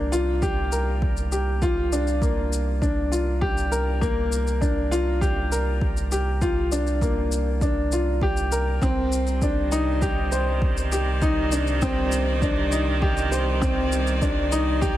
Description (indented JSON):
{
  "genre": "piano and strings electronica",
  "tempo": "100 BPM",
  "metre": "4/4",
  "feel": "straight",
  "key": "unclear",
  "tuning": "A4 = 440 Hz",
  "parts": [
    { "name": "warm upright piano", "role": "riff", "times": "0.0-15.0 s", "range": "Bb3 to C5", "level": "-24 LUFS", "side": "left 1 dB", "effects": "digital delay, shimmer reverb" },
    { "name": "round analog bass", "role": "bass", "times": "0.0-15.0 s", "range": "C2", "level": "-25 LUFS", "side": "equal", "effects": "tube saturation, sidechain pumping" },
    { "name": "shaker", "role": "drums", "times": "0.1-14.9 s", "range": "none", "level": "-36 LUFS", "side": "left 4 dB", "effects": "overdrive, studio ambience" },
    { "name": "electronic kick drum", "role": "drums", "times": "0.4-14.9 s", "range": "none", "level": "-26 LUFS", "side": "equal", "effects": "overdrive, studio ambience" },
    { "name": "bright string quartet", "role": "sustained chords", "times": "8.8-15.0 s", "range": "C3 to D5", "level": "-29 LUFS", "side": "right 2 dB", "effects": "shimmer reverb" }
  ],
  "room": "light reverb",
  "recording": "none",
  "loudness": "-21 LUFS",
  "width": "side -13 dB against mid",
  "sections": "0.0-15.0 A section",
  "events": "none",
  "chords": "0.0 Bb6/C; 8.8 Cmadd9"
}